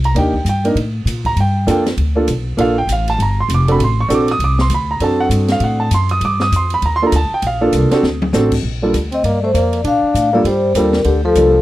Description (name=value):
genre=jazz, small-group swing and bop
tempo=198 BPM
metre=4/4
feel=swing 61% on 8ths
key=unclear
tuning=A4 = 440 Hz
part: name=upright bass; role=bass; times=0.0-11.6 s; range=F1 to Bb2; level=-17 LUFS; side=equal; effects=none
part: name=open jazz drum kit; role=drums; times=0.0-11.4 s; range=crash cymbal, hi-hat, kick drum, ride cymbal, snare drum, toms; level=-26 LUFS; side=equal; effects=none
part: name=warm concert grand piano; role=accompaniment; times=0.1-11.5 s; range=G3 to Eb6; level=-16 LUFS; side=right 2 dB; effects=none
part: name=vibraphone with soft mallets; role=melody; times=9.1-11.6 s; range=G4 to F5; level=-15 LUFS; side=left 3 dB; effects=none
part: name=bright trombone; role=second line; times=9.1-11.6 s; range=D3 to D4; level=-18 LUFS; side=equal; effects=none
room=little or no reverb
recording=dry, close 1970s-style studio recording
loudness=-13 LUFS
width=side -15 dB against mid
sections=0.0-8.6 A section; 8.6-11.6 B section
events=drum fill 8.0-8.3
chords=0.0 Cm9 (rootless); 1.4 Gm7; 3.8 D7; 6.2 Gm7; 8.0 D7; 8.6 Gm7